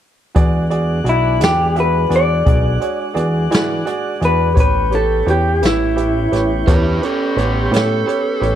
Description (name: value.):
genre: slow blues.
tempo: 57 BPM (dotted quarters).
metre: 12/8.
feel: straight.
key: unclear.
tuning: A4 = 440 Hz.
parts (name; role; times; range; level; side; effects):
clear upright piano; accompaniment; 0.3-8.6 s; F#4 to E5; -22 LUFS; right 5 dB; none.
tonewheel organ; sustained chords; 0.4-8.6 s; G#3 to F#5; -25 LUFS; equal; slow rotary speaker.
fat analog bass; bass; 0.4-8.6 s; A1 to E3; -18 LUFS; equal; none.
jazz brush drum kit; drums; 0.4-8.6 s; hi-hat, kick drum, snare drum; -18 LUFS; equal; none.
electric guitar through a small old amp; melody; 1.1-7.0 s; E4 to D5; -17 LUFS; left 1 dB; none.
overdriven slide guitar; second line; 6.7-8.6 s; B3 to B4; -21 LUFS; right 4 dB; slapback echo.
room: studio reverb.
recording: none.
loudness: -14 LUFS.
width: side -10 dB against mid.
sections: 0.4-8.6 A section.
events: none.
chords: 0.4 E9; 4.6 A9.